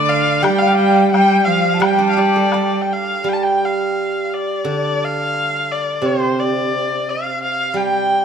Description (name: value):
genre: chinese traditional, Chinese chamber ensemble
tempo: 87 BPM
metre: 2/4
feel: rubato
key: G shang mode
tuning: A4 = 440 Hz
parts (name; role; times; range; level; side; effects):
- rich erhu; melody; 0.0-8.2 s; C5 to A5; -19 LUFS; left 2 dB; none
- bright cello; second line; 0.0-2.9 s; D3 to G3; -18 LUFS; right 3 dB; none
- dizi; second line; 0.0-2.9 s; D5 to A5; -20 LUFS; left 7 dB; none
- steel-string zither; accompaniment; 0.4-8.2 s; C3 to D5; -19 LUFS; right 4 dB; none
- woodblock; percussion; 0.4-2.7 s; none; -25 LUFS; left 6 dB; none
room: wet recital hall reverb, RT60 1.6 s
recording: close, detailed microphones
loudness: -15 LUFS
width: side -7 dB against mid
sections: 0.0-3.2 A section; 3.2-8.2 A section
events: none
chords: none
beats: | 0.45 1.13 | 1.81 2.52 | 3.24 3.96 | 4.66 5.35 | 6.04 6.72 | 7.40 8.11